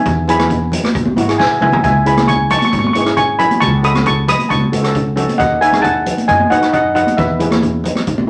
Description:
calypso; 135 BPM; 4/4; straight; E major; A4 = 439 Hz
steel pan; melody; 0.0-8.3 s; B4 to D#6; -17 LUFS; equal
steel pan; accompaniment; 0.0-8.3 s; G#3 to C#5; -23 LUFS; equal
upright bass; bass; 0.1-8.2 s; G#1 to F#2; -22 LUFS; equal
street-band drum kit; drums; 0.1-8.2 s; hi-hat, kick drum, rim click, snare drum, toms; -23 LUFS; equal
congas; percussion; 0.3-8.3 s; -22 LUFS; equal
moderate studio reverb, RT60 0.8 s; -14 LUFS; mono
0.0-8.3 A section
drum fill 1.4-1.8
0.0 E; 1.8 C#m; 3.6 F#m/C#; 5.4 B/D#; 7.2 E
| 0.04 0.49 0.94 1.38 | 1.83 2.28 2.72 3.17 | 3.61 4.06 4.50 4.95 | 5.40 5.84 6.29 6.73 | 7.18 7.63 8.07

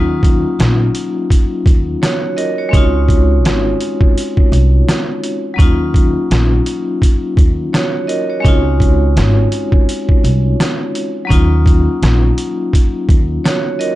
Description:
hip hop, boom-bap hip-hop; 84 BPM; 4/4; swing 59% on 16ths; Eb dorian; A4 = 440 Hz
vibraphone with hard mallets; accompaniment; 0.0-14.0 s; Gb3 to Eb5; -17 LUFS; left 1 dB; cassette tape, high-pass filter, low-pass filter
upright bass; bass; 0.0-13.4 s; Ab1 to Eb2; -14 LUFS; equal
trip hop sampler-style drum kit; drums; 0.2-14.0 s; hi-hat, kick drum, rim click, snare drum; -13 LUFS; equal
studio reverb; dark, warm production; -11 LUFS; side -16 dB against mid
0.0-14.0 A section
0.0 Ebm7; 2.7 Dbmaj7; 5.6 Ebm7; 8.4 Dbmaj7; 11.3 Ebm7
0.59 1.30 2.02 | 2.73 3.45 4.16 4.88 | 5.59 6.30 7.02 7.73 | 8.45 9.16 9.88 10.59 | 11.30 12.02 12.73 13.45

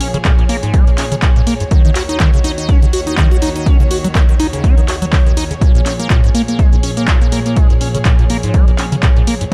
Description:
acid house; 123 BPM; 4/4; swing 56% on 16ths; Bb minor; A4 = 440 Hz
warm chamber string section; sustained chords; 0.0-9.5 s; Eb2 to Db5; -24 LUFS; equal; sidechain pumping
liquid acid bass; riff; 0.0-9.4 s; Ab2 to Gb4; -21 LUFS; equal; phaser, delay
punchy analog drum machine; drums; 0.0-9.5 s; handclaps, hi-hat; -25 LUFS; equal
electronic kick drum; drums; 0.2-9.5 s; -13 LUFS; equal
digital ambience; dark, warm production; -13 LUFS; mono
0.0-9.5 A section
0.0 Bbm7; 1.7 Ebm7; 5.6 Bbm7
0.25 0.74 1.23 | 1.71 2.20 2.69 3.18 | 3.66 4.15 4.64 5.13 | 5.62 6.10 6.59 7.08 | 7.57 8.05 8.54 9.03 | 9.52

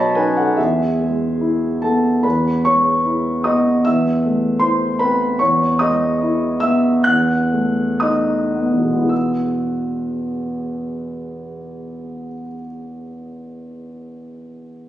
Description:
classical, romantic character piece for solo piano; 52-78 BPM; 2/4; rubato; E major; A4 = 437 Hz
warm concert grand piano; solo; 0.0-14.9 s; B1 to F#6; -16 LUFS; equal
wet recital hall reverb, RT60 1.4 s; recorded on a phone in the room, studio reverb; -15 LUFS; side -13 dB against mid
0.0-2.2 A section; 2.2-9.1 B section; 9.1-13.4 C section
slowing down 4.6-9.1
0.0 B9; 0.6 E; 3.8 Am/E; 5.4 E; 7.0 B7/E; 9.1 E
| 0.58 1.41 | 2.24 3.06 | 3.85 4.62 | 5.40 6.20 | 7.04 8.00 | 9.10 10.17 | 11.23 12.31

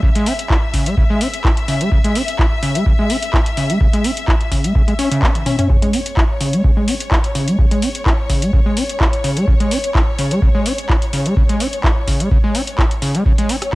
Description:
acid house; 127 BPM; 4/4; swing 53% on 16ths; C# minor; A4 = 442 Hz
clear studio string section; sustained chords; 0.0-13.8 s; C#5 to E5; -25 LUFS; left 3 dB; sidechain pumping
overdriven acid bass; riff; 0.0-13.8 s; C#3 to E4; -19 LUFS; equal; analog chorus, sidechain pumping, analog delay
electronic kick drum; drums; 0.0-13.8 s; -15 LUFS; equal
booming analog drum machine; drums; 0.2-13.7 s; handclaps, hi-hat, rim click, toms; -22 LUFS; equal
digital ambience; dry, gritty hardware recording; -14 LUFS; side -20 dB against mid
0.0-13.8 A section
drum fill 5.3-5.7
0.0 C#m
| 0.03 0.50 0.97 1.45 | 1.92 2.39 2.86 3.33 | 3.81 4.28 4.75 5.22 | 5.70 6.17 6.64 7.12 | 7.59 8.06 8.53 9.01 | 9.48 9.95 10.42 10.89 | 11.37 11.84 12.31 12.78 | 13.26 13.73

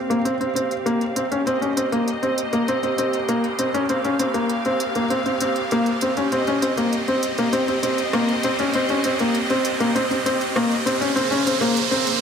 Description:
piano and strings electronica; 99 BPM; 4/4; straight; A4 = 440 Hz
bright symphonic string section; sustained chords; 0.0-12.2 s; Db3 to F5; -27 LUFS; right 1 dB; low-pass filter
warm sub bass; bass; 0.0-12.2 s; Eb1 to C2; -49 LUFS; right 1 dB
riser; sound effects; 0.0-12.2 s; -29 LUFS; right 2 dB
felt-muted upright piano; riff; 0.1-12.1 s; Bb3 to Db4; -20 LUFS; left 1 dB; tape echo
deep house drum kit; drums; 0.1-12.2 s; hi-hat, rim click; -30 LUFS; right 2 dB
moderate concert hall reverb, RT60 1.9 s; -19 LUFS; side -7 dB against mid
0.0-12.2 A section
build-up 0.0-12.2; riser 0.0-12.2
0.0 Fsus2; 1.5 Eb; 6.3 Cm; 11.2 Bbmadd9
0.26 0.86 | 1.47 2.08 2.68 3.29 | 3.89 4.50 5.11 5.71 | 6.32 6.92 7.53 8.14 | 8.74 9.35 9.96 10.56 | 11.17 11.77

